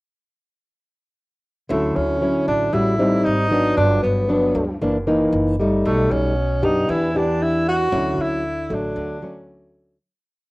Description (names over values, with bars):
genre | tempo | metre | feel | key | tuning
bossa nova | 116 BPM | 4/4 | straight | D major | A4 = 442 Hz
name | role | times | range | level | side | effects
breathy tenor saxophone | melody | 1.7-9.5 s | A3 to F#4 | -21 LUFS | equal | cassette tape
nylon-string guitar | accompaniment | 1.7-10.0 s | F#2 to G4 | -20 LUFS | equal | cassette tape
upright bass | bass | 1.7-10.0 s | F#1 to F#2 | -26 LUFS | equal | none
room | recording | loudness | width
moderate small room ambience, RT60 0.5 s | home recording on cassette | -17 LUFS | side -21 dB against mid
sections
1.7-10.0 A section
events
fade-out 7.9-10.0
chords
1.7 Dmaj9; 2.7 A6; 3.3 G#maj7; 3.8 Gmaj7; 4.8 F#7b13; 5.3 F#6; 5.8 B7b13; 6.9 Em7; 7.9 Dmaj9; 9.0 Dmaj7